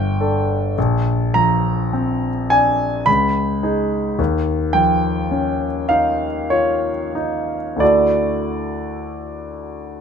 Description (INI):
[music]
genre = classical, impressionist solo piano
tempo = 45-54 BPM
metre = 3/4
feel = rubato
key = unclear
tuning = A4 = 440 Hz
[part]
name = warm concert grand piano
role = solo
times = 0.0-10.0 s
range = G1 to B5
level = -16 LUFS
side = equal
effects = none
[sound]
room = light reverb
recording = close, detailed microphones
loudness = -16 LUFS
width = side -7 dB against mid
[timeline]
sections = 0.0-10.0 A section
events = none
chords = 0.0 Gsus2; 0.8 Bbadd9; 3.1 C#sus2; 4.2 Eb9; 7.8 Dadd9